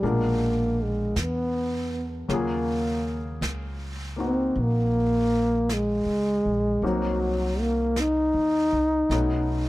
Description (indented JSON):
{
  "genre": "jazz ballad",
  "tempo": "53 BPM",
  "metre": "4/4",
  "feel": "swing 67% on 8ths",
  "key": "unclear",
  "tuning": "A4 = 440 Hz",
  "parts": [
    { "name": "breathy trombone", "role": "melody", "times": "0.0-9.7 s", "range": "Gb3 to Eb4", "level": "-24 LUFS", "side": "equal", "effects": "none" },
    { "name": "warm concert grand piano", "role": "accompaniment", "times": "0.0-9.7 s", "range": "Cb3 to Bb4", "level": "-31 LUFS", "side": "left 3 dB", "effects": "none" },
    { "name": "upright bass", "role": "bass", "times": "0.0-9.7 s", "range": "Bb1 to E2", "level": "-29 LUFS", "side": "equal", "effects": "none" },
    { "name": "jazz brush drum kit", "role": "drums", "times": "0.0-9.7 s", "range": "brushed snare drum, hi-hat, snare drum", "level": "-38 LUFS", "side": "right 1 dB", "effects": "none" }
  ],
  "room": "small room ambience",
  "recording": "dry, close 1970s-style studio recording",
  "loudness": "-22 LUFS",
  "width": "side -17 dB against mid",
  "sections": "0.0-9.7 A section",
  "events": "none",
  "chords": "0.0 Bb7b9; 2.3 Ebm11; 6.8 Cm7b5; 9.1 B9"
}